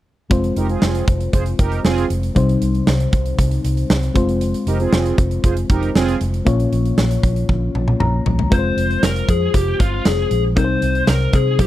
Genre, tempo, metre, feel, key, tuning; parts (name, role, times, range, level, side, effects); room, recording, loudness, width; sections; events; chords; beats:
1980s-style pop; 117 BPM; 4/4; straight; F minor; A4 = 440 Hz
mellow FM electric piano; accompaniment; 0.3-11.7 s; Bb2 to Bb5; -22 LUFS; left 3 dB; chorus
vintage muted fingered electric bass; bass; 0.3-11.7 s; F1 to C3; -20 LUFS; equal
big rock drum kit; drums; 0.3-11.7 s; hi-hat, kick drum, snare drum, toms; -19 LUFS; right 1 dB
mellow synth brass; stabs; 0.6-6.2 s; C4 to C5; -22 LUFS; right 7 dB; chorus
lead guitar through a small cranked amp; melody; 8.5-11.7 s; F4 to C5; -21 LUFS; left 4 dB; overdrive, slapback echo
little or no reverb; dry, close 1970s-style studio recording; -15 LUFS; side -14 dB against mid
0.3-8.5 A section; 8.5-11.7 B section
drum fill 7.5-8.5; FM electric piano fill 7.7-8.5
0.3 Fm; 2.4 Cm; 4.2 Fm; 6.5 Bbm; 8.5 Fm; 10.6 Cm
| 0.31 0.82 1.34 1.85 | 2.36 2.88 3.39 3.90 | 4.41 4.93 5.44 5.95 | 6.46 6.98 7.49 8.00 | 8.52 9.03 9.54 10.05 | 10.57 11.08 11.59